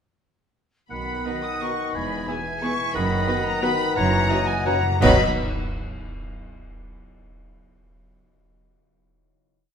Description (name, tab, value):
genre	classical, orchestral ballroom waltz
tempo	163-194 BPM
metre	3/4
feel	rubato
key	B major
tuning	A4 = 440 Hz
part	rich studio violin section	melody	0.9-5.2 s	G#5 to D#6	-30 LUFS	left 4 dB	none
part	bright clarinet	second line	0.9-5.2 s	B4 to F#5	-31 LUFS	left 1 dB	none
part	clear oboe	second line	0.9-5.2 s	D#5 to G#5	-32 LUFS	right 1 dB	none
part	mellow hollow silver concert flute	second line	0.9-5.2 s	D#5 to D#6	-30 LUFS	left 1 dB	none
part	dark bassoon	accompaniment	0.9-5.2 s	D#3 to F#3	-30 LUFS	right 1 dB	none
part	concert harp	arpeggios	0.9-6.1 s	E2 to G#5	-31 LUFS	left 6 dB	none
part	bright studio double bass section	bass	0.9-5.2 s	E1 to B1	-29 LUFS	right 3 dB	none
part	rich studio cello section	bass	0.9-5.2 s	E2 to B2	-28 LUFS	right 4 dB	none
part	timpani	percussion	0.9-5.2 s	F#2 to B2	-31 LUFS	equal	none
part	warm studio violin section	second line	1.3-5.2 s	F#4 to C#5	-32 LUFS	left 3 dB	none
part	warm studio viola section	accompaniment	1.3-5.2 s	F#3 to E4	-31 LUFS	right 1 dB	none
part	bright trombone section	sustained chords	1.3-5.2 s	B2 to F#3	-35 LUFS	right 3 dB	none
part	mellow French horn section	sustained chords	1.3-5.2 s	B3 to G#4	-33 LUFS	left 2 dB	none
part	cymbal swell, clash cymbals and concert bass drum	percussion	2.9-5.7 s	none	-31 LUFS	equal	none
room	wet recital hall reverb, RT60 1.4 s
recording	minimal, uncompressed stereo recording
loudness	-20 LUFS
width	side -7 dB against mid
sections	0.9-5.0 A section; 5.0-6.1 final chord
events	timpani fill 4.0-5.0; band accent 5.0-5.4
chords	0.9 B; 2.0 E; 2.9 B/F#; 4.0 F#7; 5.0 B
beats	| 0.91 1.26 1.62 | 1.96 2.28 2.62 | 2.94 3.28 3.63 | 3.96 4.30 4.66 | 5.02 5.36 5.73